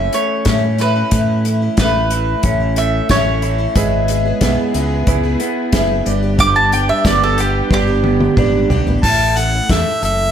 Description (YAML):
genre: folk rock and heartland rock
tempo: 91 BPM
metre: 4/4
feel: straight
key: A major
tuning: A4 = 441 Hz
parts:
  - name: mandolin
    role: second line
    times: 0.0-9.0 s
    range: G4 to D6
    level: -18 LUFS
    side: right 4 dB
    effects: slapback echo
  - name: picked twelve-string acoustic guitar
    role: accompaniment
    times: 0.0-10.3 s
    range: G2 to A4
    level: -23 LUFS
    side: left 5 dB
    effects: none
  - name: electric guitar through a small old amp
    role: riff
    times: 0.0-10.3 s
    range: G2 to A4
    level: -21 LUFS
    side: right 1 dB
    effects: none
  - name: fingered electric bass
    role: bass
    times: 0.0-10.3 s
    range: F#1 to A2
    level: -18 LUFS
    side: equal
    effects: none
  - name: unplugged drum kit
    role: drums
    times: 0.1-10.2 s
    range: crash cymbal, hi-hat, kick drum, snare drum, toms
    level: -18 LUFS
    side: left 1 dB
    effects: none
  - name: dark studio string section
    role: sustained chords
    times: 3.7-9.0 s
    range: B3 to B4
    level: -28 LUFS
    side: left 1 dB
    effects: none
  - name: clear baby grand piano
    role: accompaniment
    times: 3.8-8.9 s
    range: G4 to E5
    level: -25 LUFS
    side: right 14 dB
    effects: none
  - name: bright harmonica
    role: melody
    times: 9.0-10.3 s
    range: E5 to A5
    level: -16 LUFS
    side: equal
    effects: none
room: light reverb, small room ambience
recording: none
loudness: -13 LUFS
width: side -9 dB against mid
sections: 0.0-9.0 A section; 9.0-10.3 B section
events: mandolin solo 0.0-9.0; drum fill 7.7-9.0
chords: 0.0 A; 3.8 E/G#; 6.1 G; 9.0 A